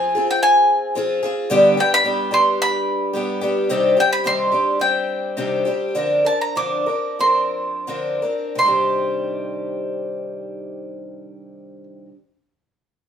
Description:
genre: folk.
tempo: 81-110 BPM.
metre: 4/4.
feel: straight.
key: C harmonic minor.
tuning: A4 = 440 Hz.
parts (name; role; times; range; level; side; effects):
bowl-back mandolin; melody; 0.0-11.8 s; G5 to D6; -18 LUFS; right 1 dB; none.
picked twelve-string acoustic guitar; accompaniment; 0.0-12.2 s; G2 to Bb4; -20 LUFS; left 1 dB; none.
room: wet studio reverb, RT60 0.7 s.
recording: band playing live in one room.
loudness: -17 LUFS.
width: side -8 dB against mid.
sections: 0.0-3.7 A section; 3.7-8.6 B section; 8.6-13.1 C section.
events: slowing down 3.7-8.6.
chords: 0.0 Fm; 1.5 G; 3.7 Cmadd9; 6.0 Bbadd9/D; 8.6 Cmadd9.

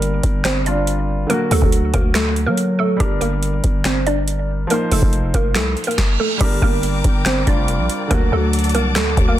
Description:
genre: hip hop, trap.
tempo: 141 BPM.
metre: 4/4.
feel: half-time.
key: G minor.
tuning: A4 = 440 Hz.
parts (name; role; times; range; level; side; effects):
hollow square pluck; melody; 0.0-9.4 s; G3 to D5; -21 LUFS; right 1 dB; chorus, low-pass filter, tape echo.
warm concert grand piano; accompaniment; 0.0-9.4 s; D3 to C5; -25 LUFS; equal; low-pass filter.
growling 808-style bass; bass; 0.0-9.4 s; F1 to F#3; -20 LUFS; equal; none.
booming analog drum machine; drums; 0.0-9.4 s; crash cymbal, finger snaps, hi-hat, kick drum, snare drum; -19 LUFS; equal; overdrive.
reverse cymbal; sound effects; 5.8-6.4 s; none; -26 LUFS; right 7 dB; none.
dark symphonic string section; sustained chords; 6.4-9.4 s; Bb4 to D6; -27 LUFS; left 3 dB; none.
room: light reverb.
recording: dense, heavily limited modern master.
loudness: -15 LUFS.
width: side -12 dB against mid.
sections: 0.0-6.4 A section; 6.4-9.4 B section.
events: reverse cymbal 5.8-6.4.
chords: 0.0 Gm; 1.3 D; 3.0 Gm; 4.7 F7sus4; 6.4 Gm; 8.1 D.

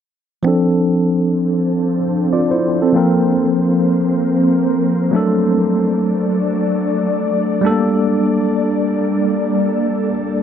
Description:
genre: afrobeats.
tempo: free time.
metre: none.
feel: none.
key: D minor.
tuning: A4 = 441 Hz.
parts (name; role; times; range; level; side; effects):
bell-like tine electric piano; accompaniment; 0.4-10.4 s; F3 to D5; -15 LUFS; equal; medium stereo tremolo, low-pass filter.
ethereal airy pad; sustained chords; 1.3-10.4 s; F3 to D5; -19 LUFS; equal; ensemble chorus, built-in reverb, low-pass filter.
room: moderate lush hall reverb, RT60 2.3 s.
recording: none.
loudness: -14 LUFS.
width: side -8 dB against mid.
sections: 0.5-10.4 A section.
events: filter sweep 0.5-10.4.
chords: 0.5 Dm7; 3.0 Bbsus2; 5.1 D; 7.6 Gmadd9.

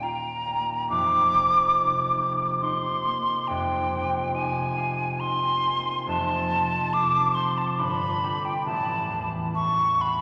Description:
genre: classical, impressionist duo for flute and harp.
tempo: 69 BPM.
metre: 3/4.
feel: rubato.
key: unclear.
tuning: A4 = 440 Hz.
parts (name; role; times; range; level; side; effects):
hollow concert flute; melody; 0.0-10.2 s; G5 to D6; -26 LUFS; equal; none.
concert harp; accompaniment; 0.0-10.2 s; Eb1 to G5; -33 LUFS; equal; none.
room: wet cathedral reverb, RT60 6.3 s.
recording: none.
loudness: -25 LUFS.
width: mono.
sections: 0.0-10.2 A section.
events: none.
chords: 0.0 Gm7/Eb; 0.9 F9sus4; 3.5 Bb11/F; 6.1 Fadd9; 7.8 Gadd9; 8.7 A5.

